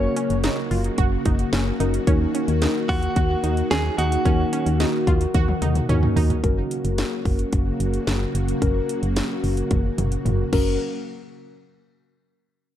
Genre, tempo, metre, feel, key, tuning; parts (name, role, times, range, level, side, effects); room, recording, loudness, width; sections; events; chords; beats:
synth-pop; 110 BPM; 4/4; straight; F# major; A4 = 441 Hz
direct-recorded clean electric guitar; melody; 0.0-5.9 s; F#4 to C#5; -27 LUFS; right 1 dB; tremolo, digital delay
muted felt-like synth keys; accompaniment; 0.0-10.8 s; A#3 to A#4; -28 LUFS; left 3 dB; chorus
string machine, cellos; sustained chords; 0.0-10.8 s; C#3 to F#4; -28 LUFS; equal; ensemble chorus
analog pluck; arpeggios; 0.0-6.3 s; C#4 to F#4; -30 LUFS; right 5 dB; chorus, digital delay
solid FM bass; bass; 0.0-10.8 s; F#1 to D#2; -23 LUFS; equal
house drum kit; drums; 0.2-10.7 s; crash cymbal, hi-hat, kick drum, snare drum, toms; -24 LUFS; equal
light reverb, digital ambience; dark, warm production; -19 LUFS; side -11 dB against mid
0.0-6.4 A section; 6.4-10.8 B section; 10.8-12.8 C section
drum fill 5.3-6.4, 9.7-10.8
0.0 F#; 2.1 D#m; 6.4 F#; 10.8 N.C.
0.44 0.98 1.53 | 2.07 2.62 3.16 3.71 | 4.25 4.80 5.35 5.89 | 6.44 6.98 7.53 8.07 | 8.62 9.16 9.71 10.26